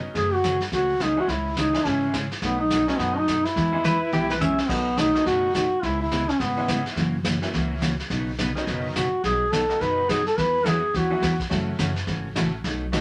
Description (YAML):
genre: country, western swing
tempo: 211 BPM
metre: 4/4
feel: swing 61% on 8ths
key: unclear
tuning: A4 = 440 Hz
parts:
  - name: tack piano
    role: accompaniment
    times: 0.0-13.0 s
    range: D#3 to F#4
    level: -35 LUFS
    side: equal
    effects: none
  - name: upright bass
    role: bass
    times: 0.0-13.0 s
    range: F#1 to F#2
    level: -34 LUFS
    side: equal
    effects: none
  - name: mellow duduk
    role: melody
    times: 0.2-6.9, 9.0-11.4 s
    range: B3 to B4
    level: -25 LUFS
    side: equal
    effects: none
  - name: picked steel-string acoustic guitar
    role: accompaniment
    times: 0.2-13.0 s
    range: B2 to B4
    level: -30 LUFS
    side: equal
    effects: none
  - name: vintage brush drum kit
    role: drums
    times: 0.2-13.0 s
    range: brushed snare drum, crash cymbal, hi-hat, kick drum, snare drum, toms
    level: -33 LUFS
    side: equal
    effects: none
  - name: pedal steel guitar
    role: second line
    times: 3.9-4.6 s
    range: G4 to E5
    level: -28 LUFS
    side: equal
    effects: none
room: moderate studio ambience, RT60 0.4 s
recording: none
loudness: -24 LUFS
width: mono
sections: 0.0-4.7 A section; 4.7-13.0 B section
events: drum fill 4.1-4.7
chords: 0.2 F#madd9; 1.3 C#m; 2.4 B7; 3.6 E; 4.7 B7; 5.8 C#m7; 7.0 F#7; 8.1 Badd9; 9.2 B; 10.4 Esus2; 11.5 F#m7